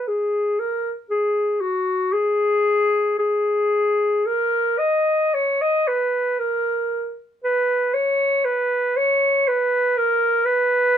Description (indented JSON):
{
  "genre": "classical, free, expressive piece for unaccompanied clarinet",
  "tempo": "55-62 BPM",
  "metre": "4/4",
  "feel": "rubato",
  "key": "G# minor",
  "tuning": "A4 = 440 Hz",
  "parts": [
    { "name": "clear clarinet", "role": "solo", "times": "0.0-11.0 s", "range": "F#4 to D#5", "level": "-18 LUFS", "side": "equal", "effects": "none" }
  ],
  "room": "light reverb",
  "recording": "minimal, uncompressed stereo recording",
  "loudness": "-18 LUFS",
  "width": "side -9 dB against mid",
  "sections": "0.0-11.0 A section",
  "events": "none",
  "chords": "none"
}